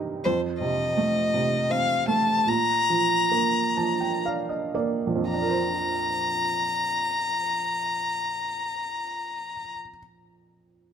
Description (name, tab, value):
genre	children's music, lullaby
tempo	54-85 BPM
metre	3/4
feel	straight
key	Bb major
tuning	A4 = 438 Hz
part	felt-muted upright piano	accompaniment	0.0-10.9 s	Bb1 to A5	-26 LUFS	right 4 dB	none
part	rich violin	melody	0.2-9.8 s	C5 to Bb5	-24 LUFS	left 3 dB	none
room	moderate recital hall reverb, RT60 1.6 s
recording	close, detailed microphones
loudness	-23 LUFS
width	side -8 dB against mid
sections	0.0-5.3 A section; 5.3-10.9 B section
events	slowing down 0.2-5.3; felt piano fill 3.3-5.3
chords	0.2 F; 2.5 Bb; 5.3 Bbadd9